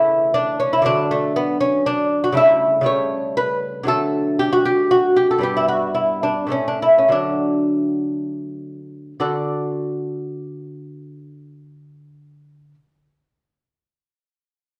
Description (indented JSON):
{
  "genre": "classical, baroque-style dance for lute",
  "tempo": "81-124 BPM",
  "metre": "3/4",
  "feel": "rubato",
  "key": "D major",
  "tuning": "A4 = 439 Hz",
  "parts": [
    { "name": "lute", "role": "solo", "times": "0.0-12.7 s", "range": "G2 to F#5", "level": "-19 LUFS", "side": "equal", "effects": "none" }
  ],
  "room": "wet large studio reverb, RT60 1.3 s",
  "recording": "band playing live in one room",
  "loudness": "-19 LUFS",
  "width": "mono",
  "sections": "0.0-9.2 A section; 9.2-13.4 B section",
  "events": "slowing down 4.7-9.2",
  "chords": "0.0 A/C#; 0.9 D; 2.4 A7/C#; 3.9 D; 5.4 G; 6.5 A; 7.1 D"
}